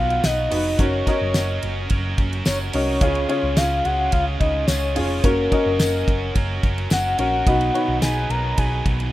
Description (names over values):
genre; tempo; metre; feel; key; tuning
piano-driven pop; 108 BPM; 4/4; straight; F# major; A4 = 440 Hz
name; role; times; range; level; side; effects
soft octave-layered synth lead; melody; 0.0-8.9 s; A#4 to A#5; -23 LUFS; left 1 dB; chorus, tremolo
clear upright piano; accompaniment; 0.0-9.1 s; B2 to D#5; -26 LUFS; left 1 dB; none
overdriven electric guitar; riff; 0.0-9.1 s; B2 to B4; -29 LUFS; right 4 dB; none
hollow-body short-scale picked electric bass; bass; 0.0-9.1 s; E#1 to C#2; -24 LUFS; equal; none
damped 70s drum kit; drums; 0.1-9.1 s; hi-hat, kick drum, ride cymbal, snare drum; -22 LUFS; equal; none
tambourine; percussion; 0.2-8.1 s; none; -34 LUFS; left 7 dB; none
room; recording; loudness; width
light reverb, studio ambience; rough home demo mix; -18 LUFS; side -15 dB against mid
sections
0.0-9.1 A section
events
none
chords
0.0 B; 0.8 F#; 3.0 C#; 5.2 F#; 7.5 B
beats
0.23 | 0.79 1.34 1.90 2.46 | 3.01 3.57 4.12 4.68 | 5.24 5.79 6.35 6.90 | 7.46 8.02 8.57